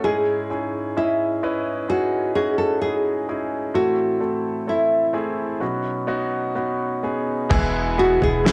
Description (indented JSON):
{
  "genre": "pop ballad",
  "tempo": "64 BPM",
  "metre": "4/4",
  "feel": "straight",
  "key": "unclear",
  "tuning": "A4 = 442 Hz",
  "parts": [
    { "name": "nylon-string guitar", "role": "melody", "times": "0.0-8.5 s", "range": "E4 to A4", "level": "-24 LUFS", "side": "equal", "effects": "cassette tape, plate reverb" },
    { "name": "clear concert grand piano", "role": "accompaniment", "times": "0.0-8.5 s", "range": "G#2 to D#5", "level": "-26 LUFS", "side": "equal", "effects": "cassette tape, plate reverb" },
    { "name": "direct-recorded clean electric guitar", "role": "arpeggios", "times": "7.5-8.5 s", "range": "E3 to E4", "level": "-30 LUFS", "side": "equal", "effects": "subtle chorus, cassette tape" },
    { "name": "saturated sub bass", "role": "bass", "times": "7.5-8.5 s", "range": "E1", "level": "-29 LUFS", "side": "equal", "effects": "none" },
    { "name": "damped 70s drum kit", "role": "drums", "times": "7.5-8.5 s", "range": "crash cymbal, kick drum, snare drum, toms", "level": "-24 LUFS", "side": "equal", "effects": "none" }
  ],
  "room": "moderate studio reverb, RT60 0.5 s",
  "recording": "home recording on cassette",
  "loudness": "-22 LUFS",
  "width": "mono",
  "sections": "0.0-7.5 A section; 7.5-8.5 B section",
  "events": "none",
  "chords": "0.0 C#madd9/G#; 3.7 Am; 5.6 Badd9; 7.5 E",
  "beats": "| 0.04 0.97 1.89 2.81 | 3.75 4.67 5.61 6.56 | 7.51 8.46"
}